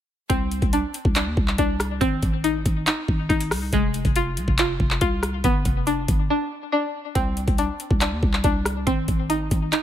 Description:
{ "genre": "hip hop, trap", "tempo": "140 BPM", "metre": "4/4", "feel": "half-time", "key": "C harmonic minor", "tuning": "A4 = 440 Hz", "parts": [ { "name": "string-like resonator pluck", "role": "arpeggios", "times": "0.3-9.8 s", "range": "Ab3 to F4", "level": "-25 LUFS", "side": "left 1 dB", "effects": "chorus, phaser, low-pass filter, ping-pong delay" }, { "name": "growling 808-style bass", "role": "bass", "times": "0.3-9.7 s", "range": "F1 to Eb2", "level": "-25 LUFS", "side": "equal", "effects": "none" }, { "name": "trap drum kit", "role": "drums", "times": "0.3-9.8 s", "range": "handclaps, hi-hat, kick drum, rim click", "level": "-23 LUFS", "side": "equal", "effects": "none" } ], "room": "little or no reverb", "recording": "none", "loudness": "-20 LUFS", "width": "side -11 dB against mid", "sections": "0.3-9.8 A section", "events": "break 6.3-7.2", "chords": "0.3 Csus2; 2.0 Ab; 3.7 Fm; 5.4 G; 7.2 Csus2; 8.9 Ab", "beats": "| 0.30 0.73 1.16 1.58 | 2.01 2.44 2.87 3.30 | 3.73 4.16 4.58 5.01 | 5.44 5.87 6.30 6.73 | 7.16 7.58 8.01 8.44 | 8.87 9.30 9.73" }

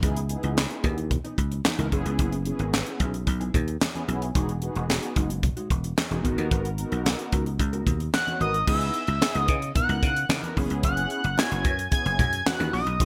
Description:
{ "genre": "early-eighties boogie funk", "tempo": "111 BPM", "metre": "4/4", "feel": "straight", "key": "unclear", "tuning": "A4 = 439 Hz", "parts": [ { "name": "mellow synth brass", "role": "accompaniment", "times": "0.0-13.1 s", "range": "B3 to C#5", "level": "-35 LUFS", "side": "equal", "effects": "chorus, phaser" }, { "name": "mellow electric guitar", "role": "riff", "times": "0.0-8.6, 13.0-13.1 s", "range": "E3 to B4", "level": "-40 LUFS", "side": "equal", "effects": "none" }, { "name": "dry thumbed slap bass", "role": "bass", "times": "0.0-13.1 s", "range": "E1 to C#3", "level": "-30 LUFS", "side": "equal", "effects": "none" }, { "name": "tight funk drum kit", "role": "drums", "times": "0.0-13.1 s", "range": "crash cymbal, handclaps, hi-hat, kick drum, snare drum", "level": "-28 LUFS", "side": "equal", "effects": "gated reverb" }, { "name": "congas", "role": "percussion", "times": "0.0-13.1 s", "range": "none", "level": "-37 LUFS", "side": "equal", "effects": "none" }, { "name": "fat analog lead", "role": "melody", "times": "8.1-13.1 s", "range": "D#6 to G#6", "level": "-29 LUFS", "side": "equal", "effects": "none" } ], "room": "light reverb, small room ambience", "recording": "bright 1980s-style digital production", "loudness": "-26 LUFS", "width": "mono", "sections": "0.0-8.7 A section; 8.7-13.1 B section", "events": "none", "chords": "0.0 C#m9; 1.9 F#9sus4; 4.4 Emaj9; 6.2 G#m9; 8.7 C#m9; 10.6 F#9sus4", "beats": "| 0.03 0.57 1.11 1.65 | 2.19 2.73 3.27 3.81 | 4.35 4.89 5.43 5.97 | 6.51 7.05 7.59 8.13 | 8.68 9.22 9.76 10.30 | 10.84 11.38 11.92 12.46 | 13.00" }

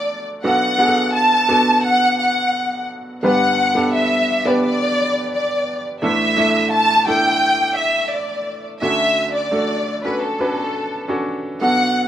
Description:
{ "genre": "pop", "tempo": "86 BPM", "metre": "4/4", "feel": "straight", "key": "D major", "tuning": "A4 = 441 Hz", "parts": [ { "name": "warm studio violin section", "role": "melody", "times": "0.0-12.1 s", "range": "A4 to A5", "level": "-17 LUFS", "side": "equal", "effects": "plate reverb" }, { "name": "bright upright piano", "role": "accompaniment", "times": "0.0-12.1 s", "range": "G1 to B4", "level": "-21 LUFS", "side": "right 1 dB", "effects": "none" } ], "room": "wet studio reverb, RT60 0.6 s", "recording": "rough home demo mix", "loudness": "-15 LUFS", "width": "side -11 dB against mid", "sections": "0.0-8.8 A section; 8.8-12.1 B section", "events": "none", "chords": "0.4 Bm7; 3.2 G; 6.0 Asus4; 8.8 Dmaj7", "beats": "| 0.45 1.14 1.84 2.54 | 3.24 3.94 4.63 5.33 | 6.03 6.73 7.42 8.12 | 8.82 9.52 10.22 10.92 | 11.62" }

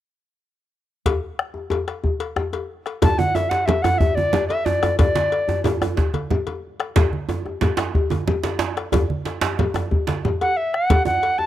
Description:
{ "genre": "west african traditional, West African drum ensemble", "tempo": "122 BPM (dotted quarters)", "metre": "12/8", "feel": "straight", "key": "D major pentatonic", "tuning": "A4 = 440 Hz", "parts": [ { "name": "bombo", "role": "percussion", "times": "1.1-11.5 s", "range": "none", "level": "-22 LUFS", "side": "left 1 dB", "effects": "none" }, { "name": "cowbell", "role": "percussion", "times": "1.1-11.4 s", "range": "none", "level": "-29 LUFS", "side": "left 7 dB", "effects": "none" }, { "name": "djembe", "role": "percussion", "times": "1.1-11.5 s", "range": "none", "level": "-25 LUFS", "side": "left 4 dB", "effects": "none" }, { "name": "mellow reedy alto recorder", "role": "melody", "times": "3.0-5.6, 10.4-11.5 s", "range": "D5 to A5", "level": "-20 LUFS", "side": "equal", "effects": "none" }, { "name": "congas", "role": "percussion", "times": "3.0-11.2 s", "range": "none", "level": "-24 LUFS", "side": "right 3 dB", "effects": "none" }, { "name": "djembe", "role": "percussion", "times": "3.0-11.2 s", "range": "none", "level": "-24 LUFS", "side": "right 5 dB", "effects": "none" } ], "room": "small room ambience", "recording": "dry, close 1970s-style studio recording", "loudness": "-19 LUFS", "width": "side -12 dB against mid", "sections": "1.1-3.0 A section; 3.0-11.5 B section", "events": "none", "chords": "none", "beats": "| 1.06 1.55 2.05 2.54 | 3.03 3.52 4.01 4.50 | 5.00 5.49 5.98 6.47 | 6.96 7.46 7.95 8.44 | 8.93 9.42 9.91 10.41 | 10.90 11.39" }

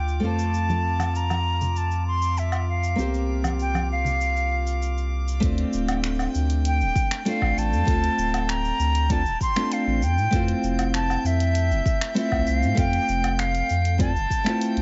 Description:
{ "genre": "sunset chillout", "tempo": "98 BPM", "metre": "4/4", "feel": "straight", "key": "F major", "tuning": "A4 = 441 Hz", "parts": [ { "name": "breathy silver concert flute", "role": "melody", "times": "0.0-14.8 s", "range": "E5 to C6", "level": "-29 LUFS", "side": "equal", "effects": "digital delay" }, { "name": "nylon-string guitar", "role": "accompaniment", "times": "0.0-14.8 s", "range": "A3 to F5", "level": "-30 LUFS", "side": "equal", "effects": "vintage 12-bit sampler grit, digital delay" }, { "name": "warm sub bass", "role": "bass", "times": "0.0-14.8 s", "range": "D1 to A2", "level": "-27 LUFS", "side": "equal", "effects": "none" }, { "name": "drifting glass-harmonics texture", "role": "texture", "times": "0.0-14.8 s", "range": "F4 to G6", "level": "-41 LUFS", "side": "equal", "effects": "chorus, built-in reverb" }, { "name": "deep house drum kit", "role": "drums", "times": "0.1-14.8 s", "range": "cabasa, finger snaps, hi-hat, woodblock", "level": "-35 LUFS", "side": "equal", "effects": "none" }, { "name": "congas", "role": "percussion", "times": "0.7-4.2 s", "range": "none", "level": "-34 LUFS", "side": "equal", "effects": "none" }, { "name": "electronic kick drum", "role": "drums", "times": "5.4-14.4 s", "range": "none", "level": "-27 LUFS", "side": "equal", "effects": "none" } ], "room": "digital ambience", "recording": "nothing above 7.8 kHz", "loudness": "-23 LUFS", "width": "mono", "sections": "0.0-5.4 A section; 5.4-14.8 B section", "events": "none", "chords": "0.2 F; 3.0 C7sus4; 5.4 Dm7; 10.0 Fmaj7", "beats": "| 0.53 1.14 1.75 2.37 | 2.98 3.59 4.20 4.82 | 5.43 6.04 6.65 7.26 | 7.88 8.49 9.10 9.71 | 10.33 10.94 11.55 12.16 | 12.78 13.39 14.00 14.61" }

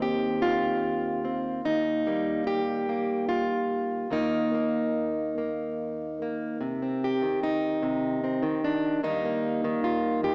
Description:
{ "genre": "folk, solo fingerstyle acoustic guitar", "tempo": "49 BPM (dotted quarters)", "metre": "6/8", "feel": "straight", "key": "Eb major", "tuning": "A4 = 441 Hz", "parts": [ { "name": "fingerpicked plugged-in steel-string acoustic guitar", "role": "solo", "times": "0.0-10.3 s", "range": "Eb2 to G4", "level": "-28 LUFS", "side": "equal", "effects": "none" } ], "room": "moderate recital hall reverb, RT60 1.4 s", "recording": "recorded in a church or concert hall, small speaker sound", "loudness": "-28 LUFS", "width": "mono", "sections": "0.0-6.6 A section; 6.6-10.3 B section", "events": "none", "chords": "0.0 Eb69; 1.7 Ebadd9; 4.1 Eb5; 6.6 Cm; 9.0 Eb", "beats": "0.43 | 1.65 2.88 | 4.12 5.37 | 6.62 7.83 | 9.04 10.24" }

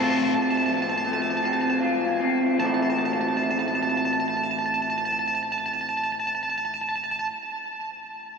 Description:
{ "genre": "rock", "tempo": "49-58 BPM (dotted quarters)", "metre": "6/8", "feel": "straight", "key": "A minor", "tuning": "A4 = 437 Hz", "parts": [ { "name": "twangy electric guitar", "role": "melody", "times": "0.0-7.3 s", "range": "A5", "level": "-26 LUFS", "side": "right 2 dB", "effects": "lush chorus, diffuse ambient delay" }, { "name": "electric guitar through a small old amp", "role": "arpeggios", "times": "0.0-7.3 s", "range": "A2 to F4", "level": "-25 LUFS", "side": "equal", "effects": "lush chorus, diffuse ambient delay" } ], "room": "wet huge ambient reverb, RT60 7.4 s", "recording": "dreamy mix soaked in reverb", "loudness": "-22 LUFS", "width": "side -5 dB against mid", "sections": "0.0-2.6 A section; 2.6-7.5 B section", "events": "slowing down 0.0-2.6", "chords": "0.0 F/A; 2.6 Am", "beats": "| 0.34 1.43 | 2.60 3.82 | 5.04 6.27" }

